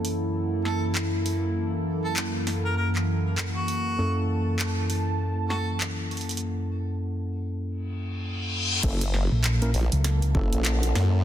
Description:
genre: glitch hop.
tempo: 99 BPM.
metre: 4/4.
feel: swing 60% on 16ths.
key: unclear.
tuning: A4 = 440 Hz.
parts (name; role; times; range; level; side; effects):
warm analog pad; sustained chords; 0.0-11.2 s; F#2 to A5; -31 LUFS; right 1 dB; chorus, sidechain pumping.
mellow tine electric piano; stabs; 0.0-11.2 s; F#2 to A#4; -29 LUFS; equal; vintage 12-bit sampler grit, sidechain pumping, low-pass filter, digital delay.
pop drum kit; drums; 0.0-11.1 s; crash cymbal, handclaps, hi-hat, snare drum; -31 LUFS; equal; none.
warbly tape-like pad; texture; 0.0-11.2 s; A#3 to A5; -35 LUFS; equal; chorus, built-in reverb, phaser, sidechain pumping.
warm harmonica; melody; 0.7-5.7 s; F#4 to A#4; -34 LUFS; right 2 dB; digital delay.
reverse cymbal; sound effects; 8.1-8.8 s; none; -30 LUFS; left 3 dB; none.
formant-sweep wobble bass; bass; 8.8-11.2 s; F#1 to F#2; -23 LUFS; equal; chorus, tube saturation.
electronic kick drum; drums; 8.8-10.5 s; none; -26 LUFS; equal; none.
fingered electric bass; bass; 9.3-10.3 s; A#1 to C#2; -22 LUFS; equal; none.
room: light reverb, digital ambience.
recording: dense, heavily limited modern master.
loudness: -24 LUFS.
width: side -11 dB against mid.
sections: 0.0-8.8 A section; 8.8-11.2 B section.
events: break 6.4-8.8; reverse cymbal 8.1-8.8; drop 8.8-11.2.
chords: 0.0 F#7#9.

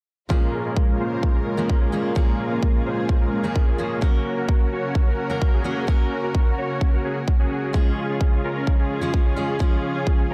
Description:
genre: EDM, festival progressive house.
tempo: 129 BPM.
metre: 4/4.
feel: straight.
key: Bb minor.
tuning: A4 = 440 Hz.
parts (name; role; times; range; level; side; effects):
fingerpicked steel-string acoustic guitar; accompaniment; 0.3-10.3 s; Bb2 to Bb4; -32 LUFS; equal; sidechain pumping, delay.
dark studio string section; sustained chords; 0.3-10.3 s; Db3 to Bb4; -34 LUFS; equal; sidechain pumping.
dense compressed supersaw; riff; 0.3-10.3 s; Ab3 to Db5; -29 LUFS; equal; sidechain pumping, low-pass filter, delay.
electronic kick drum; drums; 0.3-10.2 s; none; -22 LUFS; equal; none.
room: light reverb, small room ambience.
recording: dark, warm production.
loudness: -22 LUFS.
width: mono.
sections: 0.3-10.3 A section.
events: none.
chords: 0.3 Bbm7; 4.0 Gb; 7.7 Db.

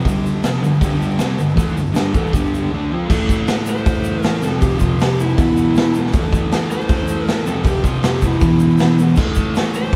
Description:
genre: garage rock duo or trio.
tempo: 158 BPM.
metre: 4/4.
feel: straight.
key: A minor.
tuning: A4 = 438 Hz.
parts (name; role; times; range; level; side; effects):
thick fuzz guitar; riff; 0.0-10.0 s; E2 to F4; -20 LUFS; equal; distortion.
tube shaker; percussion; 0.0-9.9 s; none; -43 LUFS; equal; none.
raw garage drum kit; drums; 0.1-10.0 s; crash cymbal, hi-hat, kick drum, snare drum; -21 LUFS; equal; none.
overdriven slide guitar; melody; 3.7-10.0 s; E4 to C5; -25 LUFS; equal; none.
room: moderate studio reverb, RT60 0.8 s.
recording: band playing live in one room.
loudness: -17 LUFS.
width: mono.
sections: 0.0-3.1 A section; 3.1-10.0 B section.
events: none.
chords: 0.1 G5; 3.1 Am; 4.4 F5; 5.4 E5; 6.1 Am; 7.5 F5; 8.4 E5; 9.2 Am.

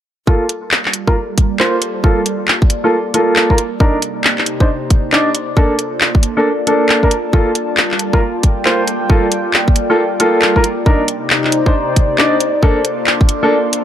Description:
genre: UK garage, two-step garage.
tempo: 136 BPM.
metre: 4/4.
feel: swing 63% on 16ths.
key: G minor.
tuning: A4 = 440 Hz.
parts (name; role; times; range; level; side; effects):
airy breathy pad; sustained chords; 0.3-13.8 s; C3 to D5; -22 LUFS; right 1 dB; chorus, phaser, sidechain pumping.
bright concert grand piano; stabs; 0.3-13.5 s; Bb3 to D5; -16 LUFS; equal; low-pass filter, dub echo.
electronic kick drum; drums; 0.3-13.3 s; none; -12 LUFS; equal; none.
warbly tape-like pad; texture; 1.0-13.8 s; Bb3 to Bb5; -22 LUFS; left 1 dB; chorus, built-in reverb, sidechain pumping.
garage drum kit; drums; 0.5-13.8 s; handclaps, hi-hat; -14 LUFS; left 1 dB; none.
room: light reverb.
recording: none.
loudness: -12 LUFS.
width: side -10 dB against mid.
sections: 0.3-13.8 A section.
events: fade-in on ambient pad 0.3-13.8; filter sweep on analog synth pad 0.3-13.8.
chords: 0.3 Gm9; 3.8 Cm9; 5.3 Bbmaj7; 7.3 Gm9; 10.9 Cm9; 12.4 Bbmaj7.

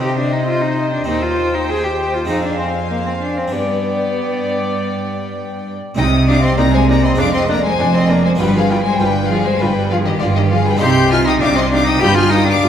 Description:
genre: classical, baroque-style concerto movement with solo episodes.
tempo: 99 BPM.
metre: 4/4.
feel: straight.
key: C minor.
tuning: A4 = 440 Hz.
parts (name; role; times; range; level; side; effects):
rich cello; melody; 0.0-12.7 s; D3 to Ab4; -19 LUFS; left 1 dB; none.
rich chamber violin section; melody; 0.0-12.7 s; D5 to G6; -23 LUFS; left 4 dB; none.
rich chamber violin section; second line; 0.0-12.7 s; F4 to C6; -23 LUFS; left 2 dB; none.
harpsichord; accompaniment; 0.0-12.7 s; Eb2 to G4; -26 LUFS; equal; none.
rich chamber viola section; accompaniment; 0.0-12.7 s; D4 to D5; -25 LUFS; equal; none.
bright studio cello section; bass; 0.0-12.7 s; Eb2 to C3; -19 LUFS; right 2 dB; none.
rich chamber double bass section; bass; 6.0-12.7 s; F1 to C2; -20 LUFS; right 2 dB; none.
room: wet concert hall reverb, RT60 2.0 s.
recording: heard from further back in the room.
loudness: -13 LUFS.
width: side -9 dB against mid.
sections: 0.0-6.0 A section; 6.0-12.7 B section.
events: none.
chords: 0.0 Cm; 1.1 Cm/Eb; 2.3 Fm; 3.5 G; 6.0 Cm; 7.2 Ddim/F; 8.4 G7; 10.8 Cm; 12.0 G7.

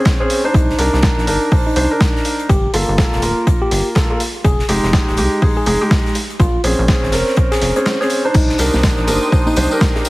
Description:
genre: deep house.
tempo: 123 BPM.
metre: 4/4.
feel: swing 60% on 16ths.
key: C minor.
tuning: A4 = 439 Hz.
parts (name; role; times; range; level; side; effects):
felt-muted upright piano; stabs; 0.0-10.1 s; Ab3 to C5; -18 LUFS; equal; sidechain pumping, tape echo.
dusty soul sampler-style drum kit; drums; 0.1-10.1 s; crash cymbal, hi-hat, snare drum; -21 LUFS; equal; none.
electronic kick drum; drums; 0.1-9.9 s; none; -15 LUFS; equal; none.
huge arena drum kit; drums; 0.1-10.1 s; hi-hat, snare drum; -29 LUFS; left 1 dB; sidechain pumping on hats, high-pass filter on hats, high-pass filter on snare, high-pass filter on room.
tine electric piano; melody; 0.5-9.7 s; Eb4 to Ab4; -24 LUFS; equal; digital delay.
rubbery square bass; bass; 0.5-9.7 s; D1 to C2; -19 LUFS; equal; sidechain pumping.
warm analog pad; sustained chords; 8.3-10.1 s; G4 to Eb6; -24 LUFS; right 2 dB; chorus, sidechain pumping.
tambourine; percussion; 8.3-10.1 s; none; -28 LUFS; left 3 dB; none.
bongos and congas; percussion; 8.6-10.0 s; none; -26 LUFS; equal; sidechain pumping on perc.
room: studio ambience.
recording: heavily compressed radio sound, vinyl crackle.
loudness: -13 LUFS.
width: side -20 dB against mid.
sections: 0.0-10.1 A section.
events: kick drops out 7.9-8.3.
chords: 0.0 Bbm7 (rootless); 0.5 Cm7; 2.5 Gm7; 4.2 Fm7; 6.2 Bbm7; 8.3 Cm7.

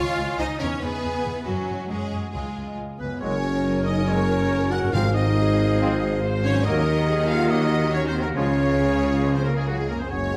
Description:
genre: cinematic, heroic adventure film score.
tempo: 139 BPM.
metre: 4/4.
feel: straight.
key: unclear.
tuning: A4 = 440 Hz.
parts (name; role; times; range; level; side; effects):
bright symphonic violin section; melody; 0.0-10.4 s; Db4 to Gb5; -37 LUFS; equal; none.
clear symphonic violin section; second line; 0.0-10.4 s; Gb4 to Gb5; -38 LUFS; equal; none.
rich symphonic viola section; accompaniment; 0.0-10.1 s; Gb3 to C5; -34 LUFS; equal; none.
concert harp; arpeggios; 0.0-10.4 s; E2 to Ab5; -36 LUFS; equal; none.
clear symphonic double bass section; bass; 0.0-10.4 s; Gb1 to Gb2; -30 LUFS; equal; none.
rich symphonic cello section; bass; 0.0-10.4 s; Gb2 to F4; -31 LUFS; equal; none.
warm oboe; second line; 3.0-10.4 s; Gb4 to Gb5; -34 LUFS; equal; none.
dark French horn section; sustained chords; 3.0-10.4 s; Gb3 to Gb4; -28 LUFS; equal; none.
mellow clarinet; second line; 3.2-10.4 s; Ab4 to Db5; -36 LUFS; equal; none.
small flute group; second line; 3.2-10.4 s; F5 to Ab5; -38 LUFS; equal; none.
bright trombone section; sustained chords; 3.2-10.4 s; F3 to C4; -36 LUFS; equal; none.
warm tuba; bass; 3.2-10.4 s; Gb1 to Eb2; -31 LUFS; equal; none.
timpani; percussion; 4.9-5.5 s; Ab2; -31 LUFS; equal; none.
room: moderate scoring stage reverb, RT60 1.9 s.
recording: none.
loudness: -23 LUFS.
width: mono.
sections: 0.0-3.2 A section; 3.2-10.4 B section.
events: none.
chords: 0.0 Dbadd9; 0.6 E; 1.5 Gbsus2; 2.3 Dbadd9; 3.2 Gbsus2; 4.9 Ab6; 6.7 Ebm; 8.4 Db.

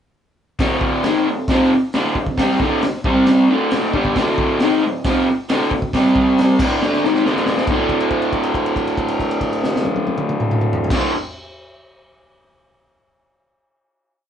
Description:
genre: garage rock duo or trio.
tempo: 137 BPM.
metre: 4/4.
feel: straight.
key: unclear.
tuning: A4 = 440 Hz.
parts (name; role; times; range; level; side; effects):
raw garage guitar; riff; 0.6-11.1 s; D2 to D4; -16 LUFS; equal; overdrive.
crunchy breakbeat drum kit; drums; 0.6-11.0 s; crash cymbal, hi-hat, kick drum, snare drum, toms; -22 LUFS; equal; none.
room: moderate studio reverb, RT60 0.7 s.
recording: band playing live in one room, nothing above 11.0 kHz.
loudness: -15 LUFS.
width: side -8 dB against mid.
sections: 0.6-7.7 riff; 7.7-11.2 final chord.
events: drum fill 6.8-7.7; held note 7.7-10.9.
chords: 0.6 D5; 3.1 C5; 3.5 D5; 5.9 C5; 6.6 D5.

